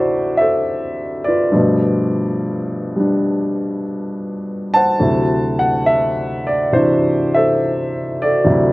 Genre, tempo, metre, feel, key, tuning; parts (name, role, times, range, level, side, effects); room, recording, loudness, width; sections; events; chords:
solo jazz; 69 BPM; 4/4; swing 69% on 8ths; D mixolydian; A4 = 441 Hz
warm upright piano; solo; 0.0-8.7 s; D2 to A5; -15 LUFS; equal
little or no reverb; recorded outdoors, with no room sound; -15 LUFS; side -20 dB against mid
0.0-8.7 A section
0.0 D9; 1.5 G9; 5.0 D9